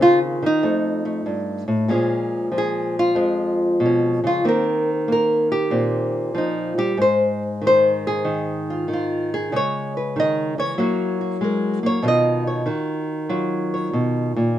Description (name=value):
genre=solo jazz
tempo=95 BPM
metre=4/4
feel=swing 68% on 8ths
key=unclear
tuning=A4 = 440 Hz
part: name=nylon-string guitar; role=solo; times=0.0-14.6 s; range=F2 to Eb5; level=-18 LUFS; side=equal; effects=none
room=light reverb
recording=minimal, uncompressed stereo recording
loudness=-18 LUFS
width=side -12 dB against mid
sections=0.0-1.9 A section; 1.9-14.6 B section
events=nylon-string guitar solo 1.9-14.6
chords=0.0 Cm7; 0.6 F7; 1.9 Bbm7; 4.4 Eb69; 7.0 Ab5; 9.5 Dbm7; 10.8 Gb7; 12.0 Badd9(#11)